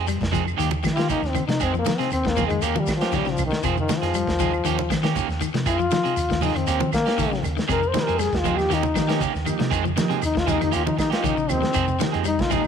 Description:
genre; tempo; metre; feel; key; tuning
afrobeat; 118 BPM; 4/4; straight; F minor; A4 = 440 Hz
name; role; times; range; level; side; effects
electric guitar at the edge of break-up; stabs; 0.0-12.7 s; Eb3 to Ab4; -28 LUFS; right 12 dB; none
hollow-body short-scale fingered electric bass; bass; 0.0-12.7 s; Bb1 to F3; -27 LUFS; right 1 dB; none
electric guitar at the edge of break-up; arpeggios; 0.1-12.7 s; C3 to G3; -28 LUFS; left 11 dB; slapback echo
crunchy breakbeat drum kit; drums; 0.1-12.6 s; hi-hat, kick drum, snare drum; -29 LUFS; right 1 dB; none
claves; percussion; 0.1-12.7 s; none; -37 LUFS; right 15 dB; none
shekere; percussion; 0.1-12.7 s; none; -37 LUFS; left 7 dB; none
congas; percussion; 0.2-12.6 s; none; -31 LUFS; right 10 dB; none
warm trombone; melody; 0.9-12.7 s; Eb3 to C5; -24 LUFS; left 4 dB; slapback echo
combo organ; accompaniment; 7.9-12.7 s; F3 to G4; -31 LUFS; right 14 dB; none
room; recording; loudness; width
light reverb, studio reverb; 1960s-style stereo with parts hard left and right; -20 LUFS; side -7 dB against mid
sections
0.0-12.7 A section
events
trombone solo 0.0-12.7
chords
0.0 Fm7; 0.6 Eb7; 1.6 Fm7; 2.6 Eb7; 3.6 Fm7; 4.7 Eb7; 5.7 Fm7; 6.7 Eb7; 7.7 Fm7; 8.7 Eb7; 9.7 Fm7; 10.7 Eb7; 11.8 Fm7

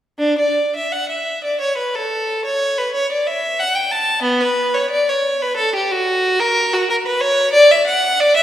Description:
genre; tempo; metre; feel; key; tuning
classical, baroque-style suite movement for unaccompanied violin; 91 BPM; 3/4; rubato; D major; A4 = 440 Hz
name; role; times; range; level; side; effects
clear violin; solo; 0.2-8.4 s; B3 to A5; -15 LUFS; equal; none
room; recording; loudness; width
wet church reverb, RT60 2.5 s; heard from further back in the room; -15 LUFS; side -11 dB against mid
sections
0.2-8.4 A section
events
none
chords
none

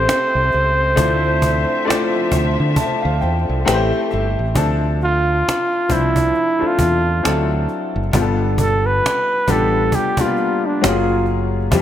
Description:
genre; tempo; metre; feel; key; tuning
R&B, neo-soul; 67 BPM; 4/4; swing 58% on 16ths; D minor; A4 = 440 Hz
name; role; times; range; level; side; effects
breathy flugelhorn; melody; 0.0-11.3 s; D4 to C5; -19 LUFS; right 1 dB; none
clear baby grand piano; accompaniment; 0.0-11.8 s; F3 to C6; -21 LUFS; left 3 dB; wide subtle chorus
warm studio string section; sustained chords; 0.0-4.5, 11.7-11.8 s; D3 to E5; -25 LUFS; left 1 dB; none
fingered electric bass; bass; 0.0-11.8 s; F#1 to D3; -20 LUFS; right 1 dB; none
cajon; drums; 0.1-11.8 s; none; -23 LUFS; right 1 dB; none
room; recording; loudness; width
moderate plate reverb, RT60 2.5 s; bright 1980s-style digital production; -15 LUFS; side -11 dB against mid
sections
0.0-4.6 A section; 4.6-11.8 B section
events
grand piano fill 1.9-4.6; flugelhorn solo 4.6-11.8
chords
0.0 Am7; 1.0 Dm9; 3.7 Am7; 4.6 Dm9; 7.2 D9; 8.1 G9; 10.8 F#maj7

